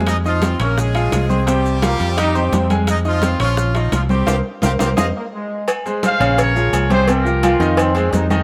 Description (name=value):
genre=latin, salsa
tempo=171 BPM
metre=4/4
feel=straight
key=F minor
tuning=A4 = 440 Hz
part: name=bright upright piano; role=accompaniment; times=0.0-8.4 s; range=C3 to Eb6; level=-23 LUFS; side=equal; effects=none
part: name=fingered electric bass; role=bass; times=0.0-8.4 s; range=Bb1 to F2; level=-21 LUFS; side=equal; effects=none
part: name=timbales and agogo bells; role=percussion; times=0.0-8.4 s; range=none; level=-30 LUFS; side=equal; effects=none
part: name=brilliant horn section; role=melody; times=0.1-5.1 s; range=F3 to Eb5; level=-26 LUFS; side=equal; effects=none
part: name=bongos and cowbell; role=percussion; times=0.1-8.3 s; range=none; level=-27 LUFS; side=equal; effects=none
part: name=congas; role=percussion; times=0.1-8.4 s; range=none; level=-26 LUFS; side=equal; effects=none
part: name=maracas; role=percussion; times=0.1-8.4 s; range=none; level=-37 LUFS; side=equal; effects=none
part: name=bright trombone section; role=second line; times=1.8-2.8, 5.2-8.4 s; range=Ab3 to F4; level=-24 LUFS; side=equal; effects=none
part: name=clear trumpet section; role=melody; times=6.1-7.8 s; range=G4 to F5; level=-22 LUFS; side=equal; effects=none
room=light reverb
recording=none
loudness=-17 LUFS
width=mono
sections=0.0-5.7 A section; 5.7-8.4 B section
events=band accent 4.3-5.7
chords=0.0 Fm7; 0.8 Bbm7; 1.5 Csus4; 2.2 Fm7; 3.6 Bbm; 4.3 C7sus4; 5.0 Fm7; 5.7 Fm; 6.4 Bbm7; 7.1 C7sus4; 7.8 Fm7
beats=| 0.07 0.42 0.77 1.12 | 1.47 1.82 2.17 2.53 | 2.88 3.23 3.58 3.93 | 4.28 4.63 4.98 5.33 | 5.68 6.03 6.38 6.73 | 7.08 7.43 7.78 8.13